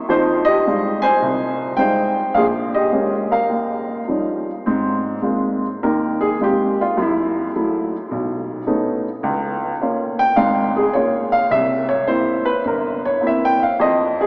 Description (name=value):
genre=solo jazz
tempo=105 BPM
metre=4/4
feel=swing 68% on 8ths, rubato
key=F minor, Ab major from 4.7 s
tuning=A4 = 440 Hz
part: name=warm upright piano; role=solo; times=0.1-14.3 s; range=G1 to Ab5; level=-16 LUFS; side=equal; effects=none
room=wet cathedral reverb, RT60 6.4 s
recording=in a vast, echoing space, small speaker sound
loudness=-16 LUFS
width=side -39 dB against mid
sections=0.0-4.7 A section; 4.7-14.3 B section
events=upright piano solo 4.7-14.3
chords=0.1 Fm9; 2.4 Bbm7; 3.5 Eb9; 4.7 Ab69; 7.0 Gbm7; 8.1 B9; 9.2 Db6; 11.5 C7